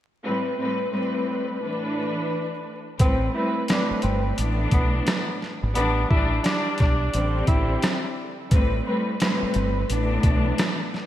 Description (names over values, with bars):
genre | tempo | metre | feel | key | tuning
hip hop, boom-bap hip-hop | 87 BPM | 4/4 | swing 61% on 16ths | A minor | A4 = 440 Hz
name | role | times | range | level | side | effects
warm studio string section | accompaniment | 0.2-11.0 s | A2 to B4 | -25 LUFS | left 1 dB | high-pass filter, low-pass filter
breathy tenor saxophone | melody | 3.0-8.0 s | B3 to E4 | -29 LUFS | right 1 dB | high-pass filter, low-pass filter, ping-pong delay
deep dub fingered electric bass | bass | 3.0-10.5 s | G1 to B1 | -25 LUFS | equal | none
boom bap sampler-style drum kit | drums | 3.0-11.0 s | hi-hat, kick drum, rim click, snare drum | -23 LUFS | equal | gated reverb
room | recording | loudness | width
moderate lush hall reverb, RT60 2.8 s | bright 1980s-style digital production, vinyl crackle | -21 LUFS | side -12 dB against mid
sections
0.2-3.0 A section; 3.0-11.1 B section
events
none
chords
0.2 Am9; 1.6 Asus24; 3.0 Am9; 4.4 Asus24; 5.8 Em7/A; 7.1 D7sus4/A; 8.5 Am9; 9.9 Asus24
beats
| 0.24 0.93 1.62 2.31 | 3.00 3.69 4.38 5.07 | 5.76 6.45 7.14 7.83 | 8.52 9.21 9.89 10.59